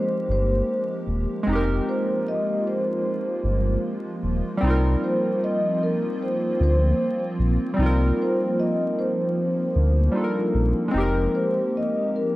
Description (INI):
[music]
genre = lo-fi hip hop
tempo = 76 BPM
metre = 4/4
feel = swing 57% on 16ths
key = F minor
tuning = A4 = 439 Hz
[part]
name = vibraphone with soft mallets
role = melody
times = 0.0-12.4 s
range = Bb4 to Eb5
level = -26 LUFS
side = equal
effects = low-pass filter
[part]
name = warm analog keys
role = accompaniment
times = 0.0-12.4 s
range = G3 to Bb4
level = -26 LUFS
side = equal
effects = chorus, low-pass filter
[part]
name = hollow soft pad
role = sustained chords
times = 0.0-12.4 s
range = F3 to G4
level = -28 LUFS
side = equal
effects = ensemble chorus, low-pass filter
[part]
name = sub bass with octave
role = bass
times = 0.3-11.3 s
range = Eb1 to D2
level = -21 LUFS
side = equal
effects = none
[sound]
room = moderate studio reverb, RT60 0.5 s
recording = worn, warbling old tape, cassette tape, vinyl crackle, warbly pitch drift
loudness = -21 LUFS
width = side -17 dB against mid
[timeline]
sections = 0.0-12.4 A section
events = none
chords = 0.0 Fm11; 4.6 Cm11; 10.9 Fm11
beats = 0.68 | 1.47 2.26 3.05 3.84 | 4.63 5.42 6.21 6.99 | 7.78 8.57 9.36 10.15 | 10.94 11.73